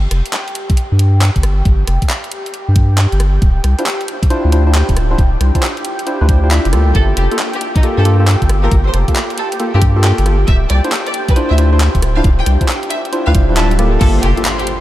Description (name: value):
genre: UK garage, two-step garage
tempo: 136 BPM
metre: 4/4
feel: swing 66% on 16ths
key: G minor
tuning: A4 = 439 Hz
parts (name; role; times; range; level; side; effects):
- warm analog pad; sustained chords; 0.0-14.8 s; G4 to C6; -25 LUFS; equal; chorus, sidechain pumping
- saturated sub bass; bass; 0.0-14.3 s; D1 to G2; -12 LUFS; equal; sidechain pumping
- garage drum kit; drums; 0.1-14.8 s; crash cymbal, handclaps, hi-hat, rim click; -22 LUFS; equal; overdrive, studio reverb
- electronic kick drum; drums; 0.7-14.1 s; none; -13 LUFS; equal; studio reverb
- percussive organ stab; stabs; 3.8-14.4 s; Bb3 to E5; -19 LUFS; equal; chorus, vintage 12-bit sampler grit, diffuse ambient delay
- rich chamber violin section; melody; 6.9-14.7 s; Eb4 to A5; -23 LUFS; equal; diffuse ambient delay
- swell and impact; sound effects; 13.4-14.8 s; none; -28 LUFS; equal; none
room: light reverb, digital ambience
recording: none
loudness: -11 LUFS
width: side -14 dB against mid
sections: 0.0-14.0 A section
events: swell 13.4-14.0; impact 14.0-14.8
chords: 0.0 N.C.; 3.4 Dm9; 7.0 Gm9; 10.5 Dm9; 14.0 Gm9